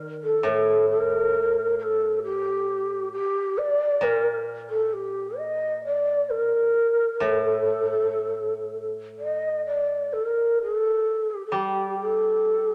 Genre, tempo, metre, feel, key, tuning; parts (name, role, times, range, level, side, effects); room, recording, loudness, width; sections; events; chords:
japanese traditional, Japanese chamber music; 61-68 BPM; 4/4; rubato; A4 = 436 Hz
koto; accompaniment; 0.0-12.7 s; A2 to G3; -31 LUFS; equal
breathy mellow long shakuhachi; melody; 0.2-12.7 s; G4 to Eb5; -25 LUFS; equal
wet spring reverb, RT60 1.9 s; -24 LUFS; mono
0.0-12.7 A section